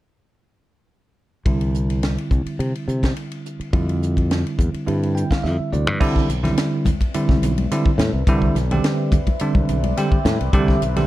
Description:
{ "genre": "electric jazz fusion", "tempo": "106 BPM", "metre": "4/4", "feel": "straight", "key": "C major", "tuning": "A4 = 441 Hz", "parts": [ { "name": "bell-like tine electric piano", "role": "accompaniment", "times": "1.5-11.1 s", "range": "D3 to G5", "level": "-22 LUFS", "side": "right 2 dB", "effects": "fast stereo tremolo" }, { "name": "modern bright fingered electric bass", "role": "bass", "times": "1.5-11.0 s", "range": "B1 to C3", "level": "-21 LUFS", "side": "equal", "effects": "none" }, { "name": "tight funk drum kit", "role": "drums", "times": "1.5-11.1 s", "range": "crash cymbal, hi-hat, kick drum, ride cymbal, snare drum, toms", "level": "-21 LUFS", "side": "equal", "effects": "none" }, { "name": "deep dark ambient pad", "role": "sustained chords", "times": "7.0-11.1 s", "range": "C4 to E5", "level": "-30 LUFS", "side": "left 1 dB", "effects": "chorus, built-in reverb" }, { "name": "congas", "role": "percussion", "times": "6.4-11.1 s", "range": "none", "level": "-26 LUFS", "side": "left 3 dB", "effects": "none" } ], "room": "light reverb", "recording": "dark, warm production", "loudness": "-17 LUFS", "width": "side -15 dB against mid", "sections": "1.5-6.0 A section; 6.0-11.1 B section", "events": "tine electric piano fill 4.9-6.0, 9.7-10.5; drum fill 5.4-6.0", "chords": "1.5 C; 3.7 F5; 4.9 G7sus4; 6.0 Cmaj9" }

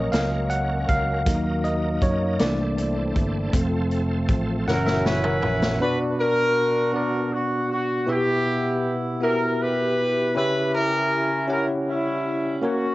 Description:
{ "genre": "slow gospel", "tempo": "53 BPM (dotted quarters)", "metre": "6/8", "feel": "straight", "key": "B harmonic minor from 5.8 s", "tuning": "A4 = 440 Hz", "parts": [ { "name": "bell-like tine electric piano", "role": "accompaniment", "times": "0.0-12.9 s", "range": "Bb2 to Gb5", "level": "-24 LUFS", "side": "equal", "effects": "fast stereo tremolo, cassette tape" }, { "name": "bright tonewheel organ", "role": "sustained chords", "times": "0.0-5.8 s", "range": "E3 to Bb4", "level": "-34 LUFS", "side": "right 2 dB", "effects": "slow rotary speaker, chorus vibrato, cassette tape" }, { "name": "mellow French horn section", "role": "sustained chords", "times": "0.0-5.8 s", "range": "Gb3 to Bb4", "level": "-34 LUFS", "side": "right 1 dB", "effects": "cassette tape" }, { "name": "fingered electric bass", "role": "bass", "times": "0.0-5.8 s", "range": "F1 to Gb2", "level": "-27 LUFS", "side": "equal", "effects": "none" }, { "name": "swinging big-band drum kit", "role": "drums", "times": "0.1-5.8 s", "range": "hi-hat, kick drum, snare drum, toms", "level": "-25 LUFS", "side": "equal", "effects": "none" }, { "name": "warm horn section", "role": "melody", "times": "4.7-12.9 s", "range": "G3 to B4", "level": "-23 LUFS", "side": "equal", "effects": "cassette tape, analog delay" } ], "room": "light reverb", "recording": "home recording on cassette, nothing above 7.9 kHz", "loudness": "-20 LUFS", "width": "side -18 dB against mid", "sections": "0.0-5.8 A section; 5.8-12.9 B section", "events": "tine electric piano solo 0.0-5.8; drum fill 4.7-5.8", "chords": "0.0 Gb; 1.3 Ebm; 2.4 C13; 3.5 F; 4.7 Gb7; 5.8 Bm; 8.1 Em/B; 10.3 C#dim" }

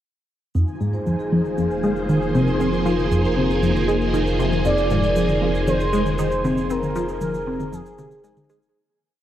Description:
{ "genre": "ambient, sequencer-driven space music", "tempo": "117 BPM", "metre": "4/4", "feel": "straight", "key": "F minor", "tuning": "A4 = 440 Hz", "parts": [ { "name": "phased string machine", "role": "sustained chords", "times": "0.6-8.8 s", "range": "F3 to C5", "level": "-25 LUFS", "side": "right 1 dB", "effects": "ensemble chorus, phaser" }, { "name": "vibraphone with soft mallets", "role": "arpeggios", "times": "0.6-8.8 s", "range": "Eb4 to C5", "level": "-27 LUFS", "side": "left 2 dB", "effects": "auto-pan, tape echo" }, { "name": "tight sequenced synth", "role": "riff", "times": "0.6-8.6 s", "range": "F2 to C4", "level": "-22 LUFS", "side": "equal", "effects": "chorus, phaser, tape echo" }, { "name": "round analog bass", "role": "bass", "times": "0.6-8.7 s", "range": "F1", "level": "-27 LUFS", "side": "equal", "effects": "none" }, { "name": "electronic shaker and toms", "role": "percussion", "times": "0.6-8.7 s", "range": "none", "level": "-32 LUFS", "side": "left 2 dB", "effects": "overdrive, tape echo" }, { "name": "bubbling stepped-filter texture", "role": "texture", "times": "0.6-8.8 s", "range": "Ab5", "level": "-35 LUFS", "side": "right 2 dB", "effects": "chorus, built-in reverb" }, { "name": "expressive portamento lead", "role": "melody", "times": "4.7-8.5 s", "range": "Ab4 to D5", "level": "-25 LUFS", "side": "right 1 dB", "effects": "analog chorus, tape echo" } ], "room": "moderate plate reverb, RT60 2.9 s", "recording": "worn, warbling old tape, cassette tape, warbly pitch drift", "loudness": "-18 LUFS", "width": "side -11 dB against mid", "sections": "0.5-8.8 A section", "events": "fade-in on drum 0.5-8.8; fade-out 6.0-8.8", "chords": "0.5 Fm7" }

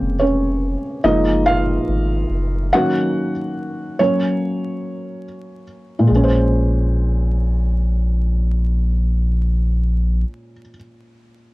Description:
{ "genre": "lo-fi hip hop", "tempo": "71 BPM", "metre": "4/4", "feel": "swing 57% on 16ths", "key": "Bb minor", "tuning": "A4 = 440 Hz", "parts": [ { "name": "felt-muted upright piano", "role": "accompaniment", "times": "0.0-11.5 s", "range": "Bb2 to Gb5", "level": "-19 LUFS", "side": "equal", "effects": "cassette tape, low-pass filter" }, { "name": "soft dub sub bass", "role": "bass", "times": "0.0-10.2 s", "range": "F1 to Bb1", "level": "-18 LUFS", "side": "equal", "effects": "none" } ], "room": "light reverb", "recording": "vinyl crackle", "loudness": "-16 LUFS", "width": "side -20 dB against mid", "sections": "0.0-6.1 A section; 6.1-9.5 B section", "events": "felt piano solo 0.0-6.1; break 2.7-6.1", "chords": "0.0 Bbm9; 1.0 Gbmaj9; 2.7 Ebm7; 4.0 Gb; 6.1 Bbm9" }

